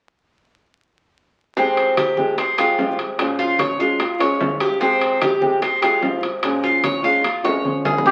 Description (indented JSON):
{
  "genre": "latin, Cuban son and guajira",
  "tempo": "148 BPM",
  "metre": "4/4",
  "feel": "straight",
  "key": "F minor",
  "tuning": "A4 = 442 Hz",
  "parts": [
    { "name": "nylon-string guitar", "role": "accompaniment", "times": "1.6-8.1 s", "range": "F2 to G4", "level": "-23 LUFS", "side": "equal", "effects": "none" },
    { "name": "Cuban tres", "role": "arpeggios", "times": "1.6-8.1 s", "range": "C4 to Db5", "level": "-22 LUFS", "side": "equal", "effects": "none" },
    { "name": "bongos", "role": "percussion", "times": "1.6-8.1 s", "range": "none", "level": "-30 LUFS", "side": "equal", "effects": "none" },
    { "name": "congas", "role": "percussion", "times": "1.6-8.1 s", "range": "none", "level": "-34 LUFS", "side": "equal", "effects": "none" },
    { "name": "timbales", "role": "percussion", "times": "1.8-7.9 s", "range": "none", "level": "-28 LUFS", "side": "equal", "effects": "none" },
    { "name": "trumpet with cup mute", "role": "melody", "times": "8.1 s", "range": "G4", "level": "-13 LUFS", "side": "equal", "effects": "none" },
    { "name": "upright bass", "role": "bass", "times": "8.1 s", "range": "F1", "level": "-30 LUFS", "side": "equal", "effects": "none" }
  ],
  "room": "wet club reverb, RT60 0.6 s",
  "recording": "very old 78 rpm record, vinyl crackle",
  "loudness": "-19 LUFS",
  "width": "mono",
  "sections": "1.6-8.1 A section",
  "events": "drum fill 7.2-8.1",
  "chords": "1.6 Fmadd9; 3.2 Bbm7; 4.8 Fmadd9; 6.4 Bbm7"
}